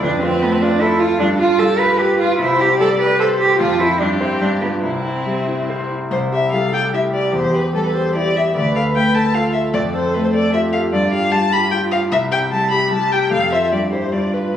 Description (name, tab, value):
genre	quick classical-period movement for piano trio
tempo	149 BPM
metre	3/4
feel	rubato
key	C major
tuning	A4 = 440 Hz
part	muted violin	melody	0.0-14.6 s	E4 to B5	-20 LUFS	left 2 dB	none
part	muted cello	second line	0.0-14.6 s	B3 to B4	-20 LUFS	right 3 dB	none
part	clear concert grand piano	accompaniment	0.0-14.6 s	C2 to C5	-18 LUFS	left 1 dB	none
room	wet recital hall reverb, RT60 1.3 s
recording	recorded on a phone in the room, club reverb, compression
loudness	-14 LUFS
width	side -10 dB against mid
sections	0.0-6.1 A section; 6.1-14.6 B section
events	none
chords	0.0 F(#11); 1.2 G7; 2.4 C5; 3.6 F; 4.0 C/G; 4.4 G7; 4.8 C; 7.3 Emadd11; 8.5 Dm; 9.7 Fadd9; 10.9 G7(no3); 12.1 C; 13.3 F; 13.7 C/G; 14.1 G7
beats	| 0.02 0.42 0.81 | 1.20 1.59 1.99 | 2.39 2.79 3.20 | 3.60 4.00 4.41 | 4.84 5.27 5.69 | 6.12 6.53 6.93 | 7.34 7.74 8.14 | 8.55 8.95 9.34 | 9.74 10.13 10.53 | 10.92 11.32 11.71 | 12.11 12.52 12.92 | 13.32 13.72 14.13 | 14.54